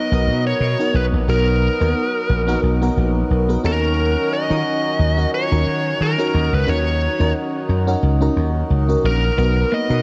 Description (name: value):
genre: pop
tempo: 89 BPM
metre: 4/4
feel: swing 55% on 16ths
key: unclear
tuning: A4 = 440 Hz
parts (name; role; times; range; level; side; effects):
- biting lead guitar; melody; 0.0-10.0 s; A#4 to D#5; -24 LUFS; equal; overdrive, tape echo
- FM electric piano with soft pad layer; accompaniment; 0.0-10.0 s; B3 to A#4; -25 LUFS; equal; chorus, phaser
- pedal harmonium; sustained chords; 0.0-10.0 s; D#3 to F#4; -30 LUFS; equal; none
- slap bass; bass; 0.1-10.0 s; A#1 to D#3; -20 LUFS; equal; none
- semi-hollow electric guitar; riff; 9.4-9.8 s; A#3 to B3; -30 LUFS; equal; subtle chorus
room: light reverb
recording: dark, warm production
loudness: -18 LUFS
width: mono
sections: 0.0-10.0 A section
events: none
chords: 0.0 Bmaj7; 3.6 D#m7; 9.4 Bmaj7